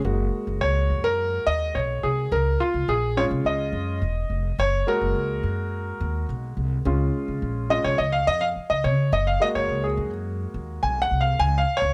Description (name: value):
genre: uptempo 1960s-style soul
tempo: 106 BPM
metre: 4/4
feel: straight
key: unclear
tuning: A4 = 440 Hz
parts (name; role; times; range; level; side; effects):
- warm concert grand piano; accompaniment; 0.0-11.9 s; Ab3 to Ab5; -26 LUFS; equal; none
- upright bass; bass; 0.0-11.9 s; Fb1 to Db3; -28 LUFS; equal; none
room: light reverb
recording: none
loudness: -24 LUFS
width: mono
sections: 0.0-11.9 A section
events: grand piano solo 0.0-11.9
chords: 0.0 Gbadd9; 2.3 Db; 4.6 Gbadd9; 6.9 Db; 9.1 Gbadd9; 11.4 Db